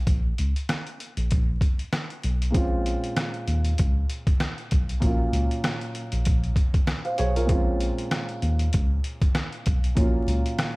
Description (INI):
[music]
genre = hip hop, boom-bap hip-hop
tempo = 97 BPM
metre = 4/4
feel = swing 58% on 16ths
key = Bb minor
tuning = A4 = 439 Hz
[part]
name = dark baby grand piano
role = accompaniment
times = 0.0-10.8 s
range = Bb2 to F5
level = -29 LUFS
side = right 1 dB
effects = cassette tape, high-pass filter, low-pass filter
[part]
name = tine electric piano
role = bass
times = 0.1-10.4 s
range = Bb1 to Eb2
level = -25 LUFS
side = equal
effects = none
[part]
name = trip hop sampler-style drum kit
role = drums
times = 0.1-10.8 s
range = hi-hat, kick drum, rim click, snare drum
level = -25 LUFS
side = equal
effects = vintage 12-bit sampler grit
[sound]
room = little or no reverb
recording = vinyl crackle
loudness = -22 LUFS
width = side -24 dB against mid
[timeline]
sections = 0.0-10.8 A section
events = break 0.1-2.5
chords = 0.1 N.C.; 2.5 Bbm9; 5.0 Gbmaj9#11/Bb; 7.5 Bbm9; 10.0 Gbmaj7/Bb